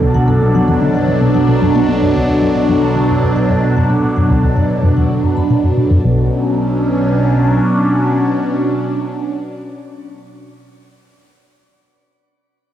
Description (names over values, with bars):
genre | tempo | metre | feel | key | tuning
ambient, sequencer-driven space music | 112 BPM | 4/4 | straight | B minor | A4 = 441 Hz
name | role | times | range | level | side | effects
phased analog pad | sustained chords | 0.0-10.5 s | B2 to D4 | -13 LUFS | equal | phaser, chorus, cassette tape, shimmer reverb
tight sequenced synth | riff | 0.0-6.3 s | B1 to D3 | -16 LUFS | left 1 dB | chorus, phaser, cassette tape, tape echo
fat analog bass | bass | 0.0-7.6 s | B1 | -30 LUFS | equal | none
vibraphone with medium hard mallets | arpeggios | 0.1-6.3 s | A4 to B5 | -25 LUFS | right 1 dB | auto-pan, cassette tape, tape echo, shimmer reverb
room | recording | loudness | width
wet spring reverb, RT60 1.8 s | home recording on cassette | -12 LUFS | side -11 dB against mid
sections
0.0-6.0 A section; 6.0-10.3 B section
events
fade-out on vibraphone 0.0-6.0; fade-out on analog synth bass 0.0-6.0; filter sweep on synth arpeggio sound 0.0-6.0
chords
0.0 Bm7; 6.0 Bm